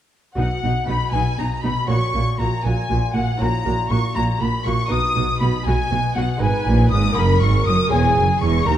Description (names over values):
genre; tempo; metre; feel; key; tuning
classical, baroque-style concerto movement with solo episodes; 80 BPM (dotted quarters); 6/8; straight; B major; A4 = 438 Hz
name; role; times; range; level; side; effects
concert flute; melody; 0.4-8.8 s; F#5 to D#6; -25 LUFS; left 3 dB; none
rich studio violin section; melody; 0.4-8.8 s; F#5 to D#6; -28 LUFS; left 3 dB; none
warm studio violin section; second line; 0.4-8.8 s; F#5 to D#6; -28 LUFS; left 3 dB; none
lute; accompaniment; 0.4-8.8 s; D#2 to D#5; -27 LUFS; left 1 dB; none
rich chamber viola section; accompaniment; 0.4-8.8 s; D#4 to B4; -29 LUFS; right 1 dB; none
rich chamber cello section; bass; 0.4-8.8 s; D#2 to B2; -23 LUFS; right 2 dB; none
rich chamber double bass section; bass; 0.4-8.8 s; E1 to D#2; -22 LUFS; right 2 dB; none
room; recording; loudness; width
moderate scoring stage reverb, RT60 1.7 s; dark, warm production; -17 LUFS; side -11 dB against mid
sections
0.4-8.8 A section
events
none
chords
0.4 B; 1.9 F#/A#; 3.4 F#7/A#; 4.9 B; 6.4 G#m; 7.2 Bmaj13/F#; 7.9 C#m/E